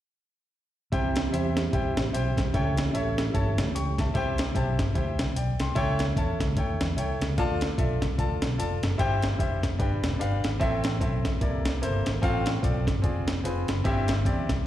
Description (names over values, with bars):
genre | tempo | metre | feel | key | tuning
uptempo gospel | 149 BPM | 4/4 | swing 59% on 8ths | C major | A4 = 444 Hz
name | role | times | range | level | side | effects
clear grand piano | accompaniment | 0.9-14.5 s | G2 to C#6 | -30 LUFS | left 1 dB | plate reverb, slapback echo
mellow tonewheel organ | sustained chords | 0.9-4.1 s | E3 to G4 | -33 LUFS | right 6 dB | fast rotary speaker, chorus vibrato, plate reverb
fingered electric bass | bass | 0.9-14.6 s | E1 to E2 | -28 LUFS | equal | none
breakbeat sampler-style drum kit | drums | 0.9-14.6 s | hi-hat, kick drum, snare drum | -28 LUFS | equal | none
room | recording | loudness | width
light reverb | live gig heard through the venue's PA, recital hall reverb | -24 LUFS | side -12 dB against mid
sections
0.9-4.2 A section; 4.2-14.7 B section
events
none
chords
0.9 C; 2.5 A7; 4.2 C; 5.8 A7/C#; 7.4 Dm; 9.0 C/G; 9.8 G; 10.6 Am; 11.4 C13; 12.2 F/A; 13.0 Fm6; 13.8 C/G